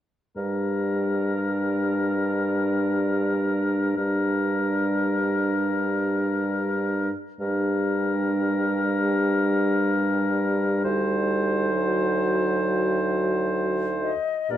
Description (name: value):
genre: classical, slow romantic movement for wind quintet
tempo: 59-71 BPM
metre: 4/4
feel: rubato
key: G minor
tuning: A4 = 445 Hz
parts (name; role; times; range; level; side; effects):
- warm oboe; second line; 0.4-14.6 s; Bb4 to C5; -29 LUFS; left 3 dB; none
- dark clarinet; accompaniment; 0.4-14.6 s; D4 to G4; -27 LUFS; right 2 dB; none
- mellow French horn; accompaniment; 0.4-14.6 s; Bb2 to G3; -28 LUFS; left 2 dB; none
- mellow bassoon; bass; 0.4-14.6 s; D2 to G2; -27 LUFS; right 1 dB; none
- silver concert flute; melody; 14.0-14.6 s; D5 to Eb5; -25 LUFS; left 9 dB; none
room: moderate large studio reverb, RT60 1.2 s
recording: dark, warm production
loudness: -22 LUFS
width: side -11 dB against mid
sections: 0.4-14.5 A section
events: none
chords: 0.4 Gm; 10.8 D7b9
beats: | 0.37 1.30 2.21 3.10 | 3.97 4.83 5.69 6.55 | 7.41 8.27 9.12 9.97 | 10.85 11.72 12.60 13.53 | 14.50